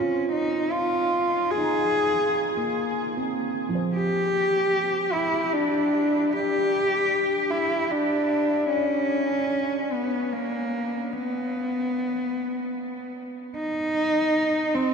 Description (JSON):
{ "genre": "ambient", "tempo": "75 BPM", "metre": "3/4", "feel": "straight", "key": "unclear", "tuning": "A4 = 441 Hz", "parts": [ { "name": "dark cello", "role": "melody", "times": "0.0-14.9 s", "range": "Bb3 to Ab4", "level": "-23 LUFS", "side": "equal", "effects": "diffuse ambient delay" }, { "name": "felt-muted upright piano", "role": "arpeggios", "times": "0.0-8.7 s", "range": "F3 to Bb5", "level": "-30 LUFS", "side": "right 3 dB", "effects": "diffuse ambient delay" } ], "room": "wet huge ambient reverb, RT60 6.9 s", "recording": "in a vast, echoing space, cassette tape", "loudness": "-22 LUFS", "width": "side -6 dB against mid", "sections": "0.0-13.5 A section; 13.5-14.9 A section", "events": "fade-out on felt piano 0.0-13.5", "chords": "0.0 F5; 8.7 N.C." }